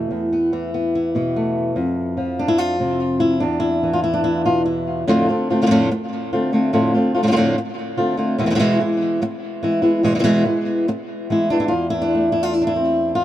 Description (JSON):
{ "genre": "flamenco", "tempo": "145 BPM", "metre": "4/4", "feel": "straight", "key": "unclear", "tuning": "A4 = 445 Hz", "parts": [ { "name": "flamenco guitar", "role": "solo", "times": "0.0-13.2 s", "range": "E2 to F4", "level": "-17 LUFS", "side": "equal", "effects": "tape echo" } ], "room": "moderate stone room reverb, RT60 1.1 s", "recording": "dark, warm production", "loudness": "-17 LUFS", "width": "side -13 dB against mid", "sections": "0.0-5.1 A section; 5.1-11.7 B section; 11.7-13.2 C section", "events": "none", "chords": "0.0 Esus4; 1.8 F5; 3.4 E5; 5.1 F6; 8.4 E; 11.7 Dm9/E" }